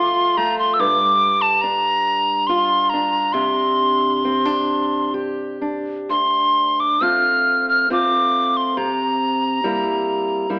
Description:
celtic folk, Celtic slow air; 63-72 BPM; 3/4; rubato; D minor; A4 = 443 Hz
tin whistle; melody; 0.0-10.5 s; A5 to F6; -17 LUFS; equal
fingerpicked steel-string acoustic guitar; accompaniment; 0.0-10.6 s; D2 to G4; -22 LUFS; equal
moderate recital hall reverb, RT60 1.6 s; AM radio sound; -16 LUFS; side -38 dB against mid
0.0-6.1 A section; 6.1-10.6 B section
0.0 F; 0.8 Gm7; 3.3 Csus2; 6.1 Dm7; 8.8 C7

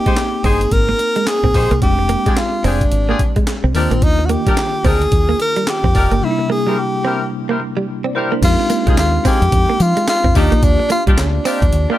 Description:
R&B, new jack swing; 109 BPM; 4/4; swing 61% on 16ths; F dorian; A4 = 437 Hz
warm tenor saxophone; melody; 0.0-12.0 s; C4 to Bb4; -18 LUFS; equal
bell-like tine electric piano; accompaniment; 0.0-12.0 s; C3 to G5; -23 LUFS; left 1 dB; fast stereo tremolo
direct-recorded clean electric guitar; riff; 0.0-12.0 s; G3 to C4; -23 LUFS; right 5 dB; lush chorus
warm horn section; stabs; 0.1-12.0 s; C4 to C5; -24 LUFS; left 3 dB
breakbeat sampler-style drum kit; drums; 0.1-11.9 s; crash cymbal, handclaps, hi-hat, kick drum, snare drum, tambourine; -17 LUFS; equal
deep dub fingered electric bass; bass; 0.4-11.9 s; F1 to F3; -17 LUFS; equal
little or no reverb; -13 LUFS; side -14 dB against mid
0.0-8.4 A section; 8.4-12.0 B section
break 6.2-8.4
0.0 Abmaj7; 1.8 Fm69; 3.7 Ebmaj7; 6.2 C7; 8.4 Fm7; 10.4 Ebmaj9

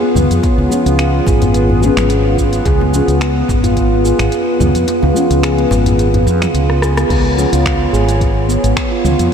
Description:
organic downtempo; 108 BPM; 4/4; swing 54% on 16ths; A4 = 439 Hz
warbly tape-like pad; sustained chords; 0.0-9.3 s; B3 to C#5; -19 LUFS; left 1 dB; chorus, built-in reverb, sidechain pumping, shimmer reverb
handpan; arpeggios; 0.0-9.3 s; B3 to G#4; -17 LUFS; right 1 dB; analog delay, shimmer reverb
quartz singing bowl; texture; 0.0-7.1 s; C#4 to C#5; -29 LUFS; right 2 dB
mellow fretless electric bass; bass; 0.2-9.3 s; G#1 to E#2; -15 LUFS; equal; sidechain pumping
organic electronic drum kit; drums; 0.2-9.3 s; crash cymbal, finger snaps, hi-hat, rim click, shaker, toms; -23 LUFS; equal
djembe; percussion; 0.2-6.4 s; -23 LUFS; left 1 dB
electronic kick drum; drums; 0.4-8.9 s; -17 LUFS; equal
felt-muted upright piano; accompaniment; 0.7-7.5 s; E#3 to G#4; -22 LUFS; left 2 dB
moderate huge ambient reverb, RT60 7.3 s; dreamy mix soaked in reverb; -11 LUFS; side -7 dB against mid
0.0-7.1 A section; 7.1-9.3 B section
kick drops out 4.9-7.1; drum fill 6.7-7.1; band accent 7.0
0.0 C#7

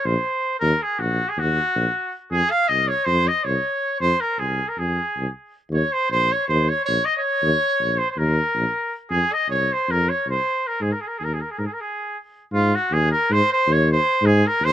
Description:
balkan folk; 317 BPM (eighths); 9/8; straight; Ab mixolydian; A4 = 439 Hz
clear trumpet; melody; 0.0-14.7 s; F4 to F5; -20 LUFS; equal
mellow tuba; bass; 0.1-14.7 s; Bb1 to Ab2; -22 LUFS; equal
little or no reverb; recorded outdoors, with no room sound; -19 LUFS; side -11 dB against mid
0.0-12.5 A section; 12.5-14.7 B section
break 11.7-12.5
0.0 Ebm; 2.3 Fm; 5.7 Eb5; 9.1 F5; 10.8 Ab5

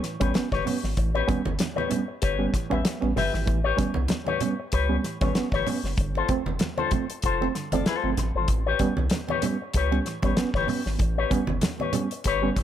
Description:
funk; 96 BPM; 4/4; swing 56% on 16ths; A mixolydian; A4 = 440 Hz
electric guitar with an envelope filter; accompaniment; 0.0-12.6 s; F4 to E5; -29 LUFS; left 8 dB
barky reed electric piano; stabs; 0.0-12.6 s; G2 to C#4; -29 LUFS; right 5 dB; fast tremolo, tape echo
damped 70s drum kit; drums; 0.0-12.6 s; hi-hat, kick drum, snare drum; -27 LUFS; equal
round analog bass; bass; 0.2-12.5 s; F1 to C#2; -28 LUFS; equal
congas; percussion; 0.2-12.4 s; -33 LUFS; right 4 dB
light reverb; -23 LUFS; side -10 dB against mid
0.0-12.6 A section
0.0 A9; 6.0 G9sus4; 8.5 A9

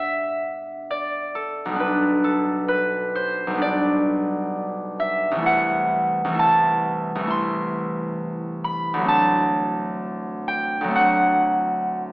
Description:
classical, solo harp piece; 65 BPM; 4/4; rubato; G major; A4 = 441 Hz
concert harp; solo; 0.0-12.1 s; B1 to C6; -20 LUFS; equal
moderate recital hall reverb, RT60 1.4 s; AM radio sound; -20 LUFS; side -22 dB against mid
0.0-12.1 A section
0.0 G; 1.8 G/B; 5.5 Am/C; 9.1 D7

